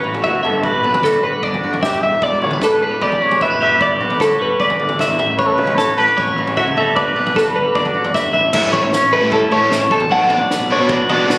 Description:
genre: math rock and midwest emo.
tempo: 152 BPM.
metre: 4/4.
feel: straight.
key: unclear.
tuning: A4 = 438 Hz.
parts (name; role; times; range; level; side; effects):
breathy trumpet; melody; 0.0-7.8 s; F#4 to E5; -20 LUFS; equal; digital delay.
twangy electric guitar; accompaniment; 0.0-11.4 s; G2 to B4; -21 LUFS; right 1 dB; phaser.
twelve-string electric guitar; arpeggios; 0.0-11.4 s; A4 to F#5; -17 LUFS; left 1 dB; digital delay.
fuzz fingered electric bass; bass; 0.0-11.4 s; E1 to B2; -22 LUFS; equal; overdrive.
compact cocktail drum kit; drums; 0.0-11.4 s; crash cymbal, kick drum, snare drum, toms; -24 LUFS; equal; none.
biting overdriven guitar; riff; 8.5-11.4 s; B2 to E4; -19 LUFS; equal; none.
room: light reverb.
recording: recorded on a phone in the room, studio reverb.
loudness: -13 LUFS.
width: side -23 dB against mid.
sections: 0.0-8.5 A section; 8.5-11.4 B section.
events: drum fill 2.0, 8.1-8.5.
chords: 0.4 Em7; 3.8 Gmaj7; 5.2 A13; 6.8 Gmaj7; 8.5 A7; 9.9 Bm7.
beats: 0.25 | 0.64 1.04 1.44 1.83 | 2.23 2.62 3.02 3.41 | 3.81 4.20 4.60 4.99 | 5.39 5.78 6.18 6.57 | 6.96 7.36 7.75 8.15 | 8.54 8.93 9.33 9.72 | 10.11 10.51 10.90 11.29.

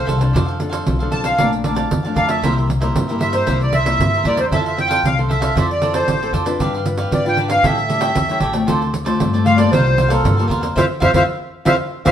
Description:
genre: samba and choro.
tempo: 115 BPM.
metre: 4/4.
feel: straight.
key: F major.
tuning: A4 = 440 Hz.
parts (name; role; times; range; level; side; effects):
accordion; melody; 0.0-12.1 s; A4 to A5; -18 LUFS; equal; light tremolo tuning.
cavaquinho; accompaniment; 0.0-12.1 s; D4 to A5; -24 LUFS; right 3 dB; none.
nylon-string guitar; accompaniment; 0.0-12.1 s; F2 to B4; -23 LUFS; left 4 dB; none.
upright bass; bass; 0.0-12.1 s; A1 to A2; -21 LUFS; left 1 dB; none.
pandeiro; percussion; 0.1-12.1 s; none; -21 LUFS; right 3 dB; none.
room: moderate stone room reverb, RT60 1.1 s.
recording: band playing live in one room.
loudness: -15 LUFS.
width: side -10 dB against mid.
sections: 0.0-12.1 A section.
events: band accent 10.8-12.1.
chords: 0.3 Dm7/F; 1.4 Bbmaj7; 2.4 C7; 4.5 Fmaj7; 5.6 Dm9/F; 6.6 G7; 7.6 A7; 8.7 Dm7; 9.7 C7sus4; 10.8 F5.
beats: | 0.35 0.87 1.39 1.91 | 2.43 2.96 3.48 4.00 | 4.52 5.04 5.56 6.08 | 6.60 7.12 7.64 8.16 | 8.68 9.20 9.72 10.24 | 10.76 11.28 11.80.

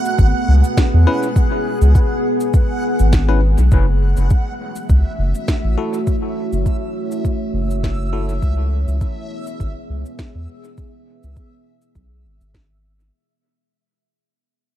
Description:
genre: ambient dub.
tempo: 102 BPM.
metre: 4/4.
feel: swing 55% on 16ths.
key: F# minor.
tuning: A4 = 440 Hz.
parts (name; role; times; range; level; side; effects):
deep dark ambient pad; sustained chords; 0.0-13.1 s; A3 to E5; -23 LUFS; equal; chorus, built-in reverb.
backwards swelling texture; texture; 0.0-13.1 s; E5 to F#5; -30 LUFS; right 3 dB; built-in reverb.
electronic cabasa and snare drum; drums; 0.1-13.1 s; none; -28 LUFS; equal; overdrive, dub echo.
round analog bass; bass; 0.2-13.1 s; F#1 to E2; -15 LUFS; equal; none.
electronic kick drum; drums; 0.2-12.7 s; none; -17 LUFS; equal; overdrive.
bell-like tine electric piano; stabs; 1.1-8.3 s; C#4 to B4; -26 LUFS; left 3 dB; slow stereo tremolo, dub echo.
room: little or no reverb.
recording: dark, warm production.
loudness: -15 LUFS.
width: side -12 dB against mid.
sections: 0.0-3.7 A section; 3.7-13.1 B section.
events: fade-out 3.7-13.1.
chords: 0.0 C#7(no3); 3.7 F#m7; 8.4 C#m7.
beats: 0.19 0.78 | 1.36 1.95 2.54 3.13 | 3.72 4.31 4.89 5.48 | 6.07 6.66 7.25 7.83 | 8.42 9.01 9.60 10.19 | 10.78 11.37 11.95 12.54.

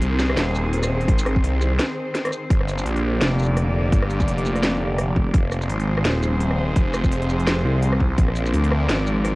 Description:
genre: half-time drum and bass.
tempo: 169 BPM.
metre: 4/4.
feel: swing 57% on 16ths, half-time.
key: G phrygian.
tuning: A4 = 439 Hz.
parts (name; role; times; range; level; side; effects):
clear studio cello section; sustained chords; 0.0-9.4 s; D3 to D5; -26 LUFS; equal; sidechain pumping, cassette tape.
phased detuned saw bass; bass; 0.0-9.4 s; Eb1 to D2; -21 LUFS; equal; phaser, tube saturation.
drum and bass drum kit; drums; 0.0-9.3 s; hi-hat, rim click, shaker, snare drum; -25 LUFS; equal; cassette tape.
backwards swelling texture; texture; 0.0-2.5 s; C4 to C5; -36 LUFS; equal; none.
electronic kick drum; drums; 1.1-8.3 s; none; -19 LUFS; equal; cassette tape.
room: little or no reverb.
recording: home recording on cassette.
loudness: -18 LUFS.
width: side -22 dB against mid.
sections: 0.0-2.5 A section; 2.5-9.4 A section.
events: drop 0.0-2.5, 2.5-9.4; break 1.8-2.5.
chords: 0.0 Ab; 2.5 Gm; 5.3 Fm; 8.2 Bbadd9.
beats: 0.02 0.37 0.73 | 1.08 1.44 1.79 2.15 | 2.50 2.86 3.21 3.57 | 3.92 4.28 4.63 4.99 | 5.34 5.70 6.05 6.41 | 6.76 7.12 7.47 7.83 | 8.18 8.54 8.89 9.25.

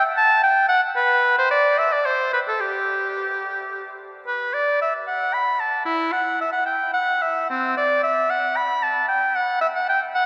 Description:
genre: classical, baroque-style fantasia for unaccompanied oboe.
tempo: 74 BPM (dotted quarters).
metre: 6/8.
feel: uneven beats, rubato.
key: G major.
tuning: A4 = 437 Hz.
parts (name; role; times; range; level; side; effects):
clear oboe; solo; 0.0-10.3 s; C4 to B5; -21 LUFS; equal; none.
room: wet cathedral reverb, RT60 6.0 s.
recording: recorded in a church or concert hall.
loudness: -21 LUFS.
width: mono.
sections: 0.0-4.3 A section; 4.3-10.3 B section.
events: none.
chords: none.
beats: 0.17 | 0.96 1.77 | 2.61 3.44 | 4.28 5.09 | 5.88 6.68 | 7.50 8.30 | 9.09 9.87.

